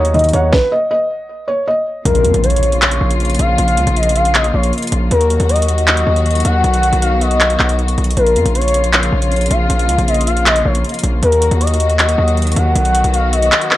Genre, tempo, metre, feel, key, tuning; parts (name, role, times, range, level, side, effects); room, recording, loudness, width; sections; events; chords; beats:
hip hop, trap; 157 BPM; 4/4; half-time; Bb phrygian; A4 = 442 Hz
felt-muted upright piano; melody; 0.0-2.0 s; Cb5 to Eb5; -15 LUFS; right 1 dB; low-pass filter
gliding portamento lead; second line; 0.0-13.8 s; Bb4 to Gb5; -17 LUFS; left 1 dB; chorus, tape echo
dark baby grand piano; accompaniment; 0.0-0.5 s; Eb3 to Eb4; -19 LUFS; equal; low-pass filter
muted studio string section; sustained chords; 0.0-13.8 s; Db3 to Gb4; -21 LUFS; left 2 dB; low-pass filter
hard-hitting 808-style bass; bass; 0.0-13.5 s; Bb1 to F2; -15 LUFS; equal
trap drum kit; drums; 0.0-13.8 s; handclaps, hi-hat, kick drum, snare drum; -18 LUFS; equal; overdrive, vintage 12-bit sampler grit
impact; sound effects; 2.1-3.6 s; -21 LUFS; equal
little or no reverb; dry, gritty hardware recording; -12 LUFS; side -15 dB against mid
0.0-2.1 A section; 2.1-13.8 B section
stop 0.5-2.1; impact 2.1-3.6; kick muted 13.5
0.0 Ebm; 0.5 N.C.; 2.1 Bbm; 5.1 Ebm; 6.6 B; 8.2 Bbm; 11.2 Ebm; 12.8 B
0.14 | 0.53 0.91 1.29 1.67 | 2.05 2.44 2.82 3.20 | 3.58 3.96 4.35 4.73 | 5.11 5.49 5.88 6.26 | 6.64 7.02 7.41 7.79 | 8.17 8.55 8.93 9.31 | 9.70 10.08 10.46 10.84 | 11.23 11.61 11.99 12.37 | 12.76 13.14 13.52